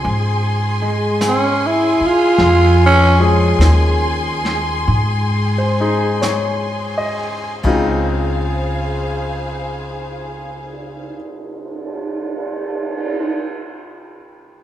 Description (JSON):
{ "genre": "jazz ballad", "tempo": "41-53 BPM", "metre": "4/4", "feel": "swing 69% on 8ths", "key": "Db major", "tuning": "A4 = 440 Hz", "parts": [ { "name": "clear grand piano", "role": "accompaniment", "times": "0.0-14.6 s", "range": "Db3 to Eb5", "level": "-22 LUFS", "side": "left 2 dB", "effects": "none" }, { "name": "warm symphonic string section", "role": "sustained chords", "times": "0.0-11.1 s", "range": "Ab4 to C6", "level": "-22 LUFS", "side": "left 1 dB", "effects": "none" }, { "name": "upright bass", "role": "bass", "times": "0.0-11.1 s", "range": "Db2 to Ab2", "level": "-18 LUFS", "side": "equal", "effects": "none" }, { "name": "vintage brush drum kit", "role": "drums", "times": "0.1-13.2 s", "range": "brushed snare drum, crash cymbal, cymbal swell, hi-hat, kick drum, snare drum", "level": "-25 LUFS", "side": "right 2 dB", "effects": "none" }, { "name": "growling tenor saxophone", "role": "melody", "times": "1.3-3.3 s", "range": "Db4 to F4", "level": "-14 LUFS", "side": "right 1 dB", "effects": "none" } ], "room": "wet recital hall reverb, RT60 1.4 s", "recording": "recorded in a church or concert hall", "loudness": "-14 LUFS", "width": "side -12 dB against mid", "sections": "0.0-7.6 A section; 7.6-13.5 B section", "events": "slowing down 0.0-7.6; tenor saxophone solo 0.0-7.6", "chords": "0.0 Dbmaj7" }